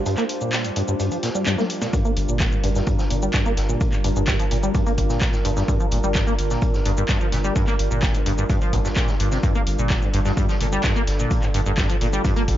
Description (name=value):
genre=acid house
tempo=128 BPM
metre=4/4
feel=straight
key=G minor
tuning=A4 = 440 Hz
part: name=warbly tape-like pad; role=sustained chords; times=0.0-12.6 s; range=G3 to C5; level=-28 LUFS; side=right 1 dB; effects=chorus, built-in reverb, sidechain pumping
part: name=liquid acid bass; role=riff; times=0.0-12.4 s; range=G2 to Bb3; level=-24 LUFS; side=equal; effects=lush chorus, tape echo
part: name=punchy analog drum machine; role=drums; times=0.1-12.6 s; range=handclaps, hi-hat, shaker, snare drum, toms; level=-28 LUFS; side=left 1 dB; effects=none
part: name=vintage drum kit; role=drums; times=0.1-12.6 s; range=hi-hat, snare drum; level=-37 LUFS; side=equal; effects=sidechain pumping on hats, high-pass filter on hats, high-pass filter on snare, high-pass filter on room
part: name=electronic kick drum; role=drums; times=1.9-12.6 s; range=none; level=-22 LUFS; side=equal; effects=none
part: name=saturated sub bass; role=bass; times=2.2-12.6 s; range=G1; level=-25 LUFS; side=equal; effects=sidechain pumping
room=light reverb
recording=dark, warm production, nothing above 7.5 kHz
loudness=-19 LUFS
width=side -12 dB against mid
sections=0.0-12.6 A section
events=filter sweep on acid bass 0.0-12.6; break 0.1-1.9; drum fill 1.5-1.9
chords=0.0 Gm7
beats=| 0.06 0.53 1.00 1.46 | 1.93 2.40 2.87 3.34 | 3.81 4.28 4.75 5.21 | 5.68 6.15 6.62 7.09 | 7.56 8.03 8.50 8.96 | 9.43 9.90 10.37 10.84 | 11.31 11.78 12.25